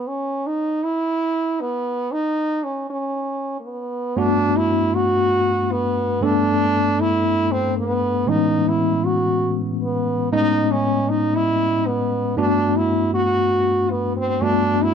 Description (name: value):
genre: funk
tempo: 117 BPM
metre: 4/4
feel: straight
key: G major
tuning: A4 = 437 Hz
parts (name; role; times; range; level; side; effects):
- clear French horn; melody; 0.0-14.9 s; Bb3 to F#4; -20 LUFS; right 2 dB; none
- tine electric piano; accompaniment; 4.2-14.9 s; G2 to Eb5; -20 LUFS; left 2 dB; medium stereo tremolo
room: small room ambience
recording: dry, close 1970s-style studio recording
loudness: -18 LUFS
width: side -7 dB against mid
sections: 0.0-4.2 A section; 4.2-14.9 B section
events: none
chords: 0.0 N.C.; 4.2 Gmaj9; 8.3 Amaj9; 12.4 Gmaj9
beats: | 0.07 0.58 1.09 1.61 | 2.12 2.63 3.15 3.66 | 4.17 4.68 5.20 5.71 | 6.22 6.74 7.25 7.76 | 8.27 8.79 9.30 9.81 | 10.32 10.84 11.35 11.86 | 12.38 12.89 13.40 13.91 | 14.43